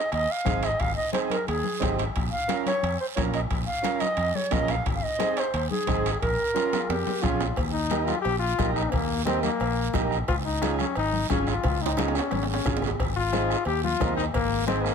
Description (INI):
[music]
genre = latin, cumbia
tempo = 177 BPM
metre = 4/4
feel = straight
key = unclear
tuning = A4 = 442 Hz
[part]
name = bright reedy bansuri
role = melody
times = 0.0-7.2 s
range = Ab4 to F5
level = -27 LUFS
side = right 1 dB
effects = none
[part]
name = fingered electric bass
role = bass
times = 0.1-14.9 s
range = Ab1 to F2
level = -30 LUFS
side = equal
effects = none
[part]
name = bombo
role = percussion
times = 0.1-14.9 s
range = none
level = -31 LUFS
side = left 2 dB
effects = none
[part]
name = congas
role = percussion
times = 0.1-14.9 s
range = none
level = -34 LUFS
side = left 5 dB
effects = none
[part]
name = guiro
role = percussion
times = 0.1-14.9 s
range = none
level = -38 LUFS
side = right 7 dB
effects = none
[part]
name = timbales and cowbell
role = percussion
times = 0.1-14.9 s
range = none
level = -35 LUFS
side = right 5 dB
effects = none
[part]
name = overdriven combo organ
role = accompaniment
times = 0.4-14.9 s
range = C4 to Bb4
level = -30 LUFS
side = right 6 dB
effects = none
[part]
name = brilliant trombone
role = second line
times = 6.5-14.9 s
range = Bb3 to G4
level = -28 LUFS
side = left 6 dB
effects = none
[sound]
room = light reverb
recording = none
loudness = -23 LUFS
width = side -6 dB against mid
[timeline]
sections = 0.0-7.6 A section; 7.6-14.9 B section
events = drum fill 6.6-7.6, 11.6-13.0; trombone solo 7.6-14.9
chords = 0.0 Ab; 2.1 Bbm; 4.9 Ab; 6.2 Bbm; 7.6 Eb; 10.3 Db; 13.0 Ab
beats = 0.12 0.45 | 0.79 1.13 1.47 1.81 | 2.15 2.49 2.83 3.16 | 3.50 3.84 4.18 4.52 | 4.86 5.20 5.54 5.87 | 6.21 6.55 6.89 7.23 | 7.57 7.91 8.25 8.59 | 8.92 9.26 9.60 9.94 | 10.28 10.62 10.96 11.30 | 11.64 11.97 12.31 12.65 | 12.99 13.33 13.67 14.01 | 14.35 14.69